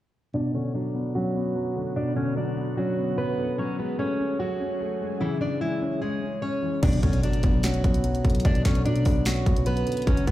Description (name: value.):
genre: hip hop, trap.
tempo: 148 BPM.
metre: 4/4.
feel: half-time.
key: unclear.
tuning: A4 = 440 Hz.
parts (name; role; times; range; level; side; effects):
fingerpicked plugged-in steel-string acoustic guitar; melody; 0.3-10.3 s; E3 to D5; -28 LUFS; right 1 dB; low-pass filter, digital delay.
dark concert grand piano; accompaniment; 0.3-10.3 s; B2 to C#5; -28 LUFS; left 1 dB; low-pass filter.
ethereal airy pad; sustained chords; 1.1-6.8 s; D3 to G#4; -36 LUFS; left 1 dB; ensemble chorus, built-in reverb, low-pass filter.
growling 808-style bass; bass; 6.8-10.3 s; F#1 to B2; -26 LUFS; equal; none.
trap drum kit; drums; 6.8-10.3 s; crash cymbal, hi-hat, kick drum, snare drum; -24 LUFS; equal; none.
impact; sound effects; 6.8-8.4 s; none; -30 LUFS; equal; none.
room: digital ambience.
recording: played on a big sound system in a bare room, large studio reverb.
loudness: -23 LUFS.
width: side -14 dB against mid.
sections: 0.3-6.8 A section; 6.8-10.3 B section.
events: filter sweep 0.3-6.8; impact 6.8-8.4.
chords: 0.3 Bmadd9; 3.6 F#madd9; 5.2 C#m; 6.8 Bmadd9.